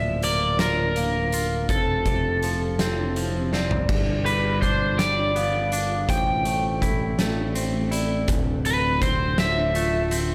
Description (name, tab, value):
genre	post-rock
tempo	55 BPM (dotted quarters)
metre	6/8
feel	straight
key	unclear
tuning	A4 = 440 Hz
part	crunchy overdriven guitar	melody	0.0-10.3 s	A4 to G5	-27 LUFS	equal	slapback echo
part	granular cloud pad	sustained chords	0.0-10.3 s	D3 to A5	-38 LUFS	equal	none
part	twangy electric guitar	arpeggios	0.0-10.3 s	D2 to F4	-33 LUFS	equal	spring reverb, slapback echo
part	vibraphone with soft mallets	arpeggios	0.0-10.3 s	C4 to F5	-34 LUFS	equal	slapback echo
part	growling picked electric bass	bass	0.0-10.3 s	D1 to A1	-29 LUFS	equal	overdrive
part	oversized low-tuned drum kit	drums	0.2-10.3 s	crash cymbal, hi-hat, kick drum, snare drum, toms	-30 LUFS	equal	none
room	light reverb, small room reverb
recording	none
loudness	-23 LUFS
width	mono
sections	0.0-3.9 A section; 3.9-10.3 B section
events	drum fill 3.5-3.9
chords	0.0 Bbmaj7/D; 1.7 Fmaj7; 3.9 G9; 6.1 Am7; 8.3 Dm7